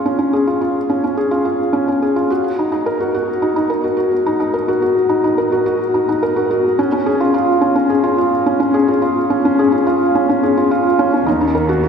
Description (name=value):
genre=piano and strings electronica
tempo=107 BPM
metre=4/4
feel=straight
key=unclear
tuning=A4 = 442 Hz
part: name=felt-muted upright piano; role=riff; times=0.0-11.9 s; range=Db4 to Bb4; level=-14 LUFS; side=equal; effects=digital delay, shimmer reverb
part: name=muted studio cello section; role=bass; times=11.3-11.9 s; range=Eb2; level=-19 LUFS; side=right 1 dB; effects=none
room=wet scoring stage reverb, RT60 1.6 s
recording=none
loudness=-14 LUFS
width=side -6 dB against mid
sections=0.0-11.3 A section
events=build-up 0.0-11.3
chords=0.0 Db; 2.3 Ebm; 6.8 Db; 11.3 Ebm